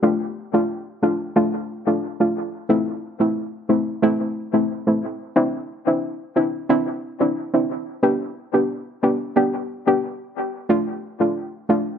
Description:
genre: dancehall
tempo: 90 BPM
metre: 4/4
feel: straight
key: C major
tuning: A4 = 436 Hz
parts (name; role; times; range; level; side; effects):
- soft round pluck; solo; 0.0-11.8 s; A3 to G4; -19 LUFS; equal; chorus, dub echo
room: moderate spring reverb, RT60 1.2 s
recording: echo-heavy mix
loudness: -20 LUFS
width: side -8 dB against mid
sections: 0.0-5.4 A section; 5.4-12.0 B section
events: none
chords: 0.0 Dm; 2.7 Am; 5.4 Cadd9; 8.0 G; 10.7 Dm

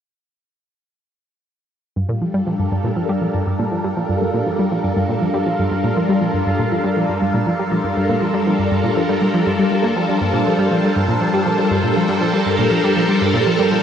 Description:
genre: ambient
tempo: 120 BPM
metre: 4/4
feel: straight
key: G minor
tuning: A4 = 438 Hz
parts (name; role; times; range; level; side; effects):
- phased string machine; sustained chords; 2.1-13.8 s; G3 to Bb4; -18 LUFS; equal; ensemble chorus, phaser
- analog pluck; riff; 2.0-13.8 s; G2 to Bb3; -20 LUFS; equal; chorus, analog delay
- bubbling stepped-filter texture; texture; 2.0-13.8 s; F4 to F5; -26 LUFS; right 1 dB; chorus, built-in reverb
room: wet huge ambient reverb, RT60 7.5 s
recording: none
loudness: -16 LUFS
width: side -8 dB against mid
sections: 2.0-13.8 A section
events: filter sweep on synth arpeggio sound 2.0-13.8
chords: 2.0 Gm7

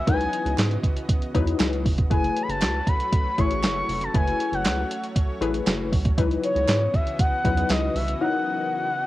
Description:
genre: early-eighties boogie funk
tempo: 118 BPM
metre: 4/4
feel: straight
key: F# minor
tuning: A4 = 443 Hz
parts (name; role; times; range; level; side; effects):
- expressive portamento lead; melody; 0.0-9.1 s; C#5 to C#6; -26 LUFS; left 1 dB; chorus
- lush unison pad; sustained chords; 0.0-9.1 s; C#3 to D#5; -34 LUFS; equal; chorus, cassette tape
- funky polysynth comp; accompaniment; 0.1-8.9 s; F#3 to C#5; -27 LUFS; left 6 dB; chorus, cassette tape
- rubbery square bass; bass; 0.1-8.2 s; E#1 to G#2; -27 LUFS; right 1 dB; none
- clean 12-bit digital drum machine; drums; 0.1-8.2 s; handclaps, hi-hat, kick drum, snare drum; -23 LUFS; right 1 dB; none
- group handclap; percussion; 0.6-7.8 s; none; -39 LUFS; right 10 dB; none
room: light reverb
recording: home recording on cassette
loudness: -21 LUFS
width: side -16 dB against mid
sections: 0.0-9.1 A section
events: break 8.2-9.1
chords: 0.0 C#m11; 2.1 F#m11; 6.2 C#m11

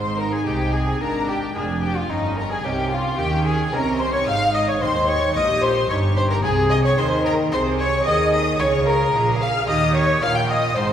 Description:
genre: classical, baroque-style concerto movement with solo episodes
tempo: 111 BPM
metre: 4/4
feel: straight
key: Ab major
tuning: A4 = 440 Hz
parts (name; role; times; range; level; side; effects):
- clear studio violin section; melody; 0.0-10.9 s; Eb5 to G6; -28 LUFS; left 4 dB; none
- rich chamber violin section; second line; 0.0-10.9 s; Eb4 to G5; -25 LUFS; left 1 dB; none
- lute; accompaniment; 0.0-10.9 s; Eb2 to Bb4; -30 LUFS; equal; none
- rich chamber viola section; accompaniment; 0.0-10.9 s; Db4 to Ab4; -27 LUFS; left 1 dB; none
- rich studio cello section; bass; 0.0-10.9 s; Eb2 to Eb3; -25 LUFS; right 2 dB; none
- warm studio double bass section; bass; 0.0-10.9 s; F1 to Eb2; -26 LUFS; right 2 dB; none
- rich violin; melody; 0.2-10.9 s; Eb4 to G5; -24 LUFS; left 1 dB; none
room: wet recital hall reverb, RT60 1.8 s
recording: heard from further back in the room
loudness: -18 LUFS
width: side -9 dB against mid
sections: 0.0-10.9 A section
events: none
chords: 0.0 Ab; 1.0 Bb7/Ab; 2.1 Eb7/G; 4.3 Ab; 5.4 Eb7/Bb; 6.4 Ab/C; 8.6 Bbm7/Db; 9.7 Eb7

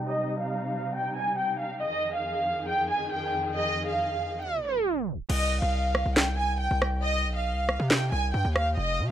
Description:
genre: hip hop, drill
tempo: 138 BPM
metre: 4/4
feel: half-time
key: C minor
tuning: A4 = 437 Hz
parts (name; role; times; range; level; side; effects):
- dark symphonic string section; sustained chords; 0.0-5.3 s; F2 to Ab4; -34 LUFS; equal; low-pass filter
- warm studio violin section; melody; 0.1-9.1 s; Eb5 to Ab5; -28 LUFS; equal; low-pass filter, tape echo
- distorted 808-style bass; bass; 5.3-9.1 s; F1 to C3; -27 LUFS; equal; distortion
- drill drum kit; drums; 5.3-8.7 s; crash cymbal, handclaps, rim click, snare drum; -27 LUFS; equal; none
room: little or no reverb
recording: dry, gritty hardware recording, tape stop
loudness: -25 LUFS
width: side -10 dB against mid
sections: 0.0-5.3 A section; 5.3-9.1 B section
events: filter sweep 0.0-5.3; tape stop 4.4-5.3; hi-hats muted 5.3-9.1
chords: 0.0 Cm; 1.8 Fm7; 5.3 C5

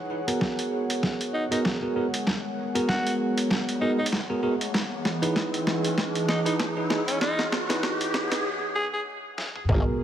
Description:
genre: glitch hop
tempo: 97 BPM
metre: 4/4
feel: swing 57% on 16ths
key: unclear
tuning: A4 = 440 Hz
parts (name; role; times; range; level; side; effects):
- warbly tape-like pad; sustained chords; 0.0-10.0 s; B2 to D#5; -33 LUFS; equal; chorus, built-in reverb, sidechain pumping
- riser and impact; sound effects; 0.0-10.0 s; none; -34 LUFS; equal; none
- airy breathy pad; texture; 0.0-8.5 s; E3 to F#5; -35 LUFS; right 1 dB; chorus, sidechain pumping
- bell-like tine electric piano; stabs; 0.3-10.0 s; B3 to B4; -29 LUFS; right 1 dB; sidechain pumping, low-pass filter, digital delay
- boom bap sampler-style drum kit; drums; 0.3-9.7 s; hi-hat, snare drum, toms; -28 LUFS; equal; studio reverb
- electronic kick drum; drums; 0.4-9.8 s; none; -29 LUFS; equal; high-pass filter on kick, studio reverb
- raspy tenor saxophone; melody; 1.3-9.0 s; C#4 to G#4; -31 LUFS; equal; vintage 12-bit sampler grit, digital delay
- formant-sweep wobble bass; bass; 9.7-9.8 s; G#1; -25 LUFS; equal; chorus, overdrive
room: moderate lush hall reverb, RT60 2.3 s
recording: vinyl crackle, high-pass filter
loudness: -24 LUFS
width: side -10 dB against mid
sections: 0.0-9.7 A section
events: build-up 0.0-9.7; drum fill 0.0-8.5, 9.4-9.7; riser 0.0-8.5; filter sweep on tine electric piano 0.0-9.7; filter sweep on ambient pad 0.0-9.7; break 8.5-9.7; impact 9.7-10.0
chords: 0.0 G#m9; 4.7 Emaj7

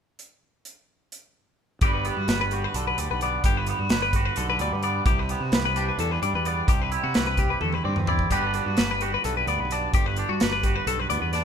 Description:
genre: math rock and midwest emo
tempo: 258 BPM (eighths)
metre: 7/8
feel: straight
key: G major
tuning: A4 = 440 Hz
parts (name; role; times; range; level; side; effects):
- modern studio drum kit; drums; 0.2-11.4 s; hi-hat, kick drum, snare drum, toms; -25 LUFS; equal; none
- twangy electric guitar; accompaniment; 1.8-11.4 s; G2 to B4; -29 LUFS; right 7 dB; none
- twelve-string electric guitar; arpeggios; 1.8-11.4 s; F#4 to D5; -27 LUFS; left 8 dB; none
- fuzz fingered electric bass; bass; 1.8-11.4 s; G1 to C3; -29 LUFS; equal; overdrive
room: light reverb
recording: band playing live in one room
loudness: -22 LUFS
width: side -8 dB against mid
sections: 0.2-1.8 A section; 1.8-11.4 B section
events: drum fill 7.6-8.3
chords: 0.2 N.C.; 1.8 Gmaj7; 5.1 Cmaj9; 8.3 Gmaj7

